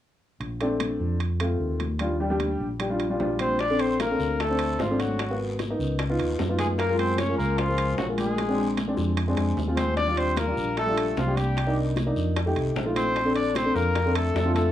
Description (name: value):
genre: Afro-Cuban jazz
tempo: 151 BPM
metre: 4/4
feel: straight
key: Bb major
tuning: A4 = 439 Hz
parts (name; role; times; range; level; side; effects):
- fingered electric bass; bass; 0.4-14.7 s; Ab1 to Gb2; -28 LUFS; equal; none
- congas; percussion; 0.4-14.7 s; none; -36 LUFS; left 3 dB; none
- timbales; percussion; 0.4-14.7 s; none; -34 LUFS; right 9 dB; none
- dark upright piano; accompaniment; 0.6-14.7 s; G3 to C5; -27 LUFS; equal; cassette tape
- breathy trumpet; melody; 3.4-14.7 s; F4 to D5; -27 LUFS; left 1 dB; cassette tape
- breathy tenor saxophone; second line; 3.4-14.7 s; F3 to D4; -32 LUFS; left 4 dB; cassette tape
- bongos; percussion; 3.6-14.6 s; none; -34 LUFS; left 8 dB; none
- guiro; percussion; 3.6-14.7 s; none; -44 LUFS; left 4 dB; none
room: moderate booth ambience, RT60 0.2 s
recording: home recording on cassette, small room ambience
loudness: -23 LUFS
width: side -12 dB against mid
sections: 0.4-3.6 A section; 3.6-14.7 B section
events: drum fill 8.4-10.0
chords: 0.4 Bbmaj7; 2.0 Ebmaj7; 3.6 Bbmaj9; 5.2 Abm7; 6.0 Db7; 6.8 Gbmaj7; 8.4 Bb7; 10.0 Ebmaj7; 11.6 Cm7; 12.4 F7; 13.2 Bbmaj9